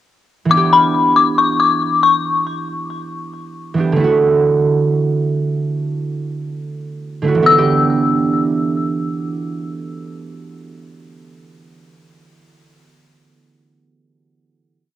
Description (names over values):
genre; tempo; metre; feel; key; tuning
hip hop; free time; none; none; E minor; A4 = 439 Hz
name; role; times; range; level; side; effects
dark detuned synth bell; melody; 0.5-2.2, 7.5-8.7 s; B5 to E6; -14 LUFS; left 5 dB; chorus, cassette tape, analog delay
concert harp; accompaniment; 0.5-11.2 s; D3 to G4; -17 LUFS; right 4 dB; cassette tape
room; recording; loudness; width
moderate spring reverb, RT60 2.0 s; home recording on cassette; -13 LUFS; side -12 dB against mid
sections
0.5-7.5 verse; 7.5-10.9 final chord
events
break 2.2-7.5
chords
0.5 Em7; 4.0 Dadd9; 7.5 Em7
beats
free time